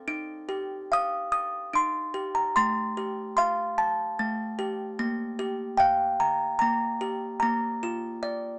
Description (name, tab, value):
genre	children's music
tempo	74 BPM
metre	3/4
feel	straight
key	unclear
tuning	A4 = 438 Hz
part	music box	solo	0.0-8.6 s	A3 to Eb6	-28 LUFS	equal	none
room	moderate studio reverb, RT60 0.7 s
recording	none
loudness	-28 LUFS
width	mono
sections	0.0-8.6 A section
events	none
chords	0.1 Ebadd9; 2.6 Fadd9; 5.0 Gm7; 7.4 Bb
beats	| 0.08 0.91 1.74 | 2.56 3.37 4.17 | 4.97 5.78 6.59 | 7.41 8.22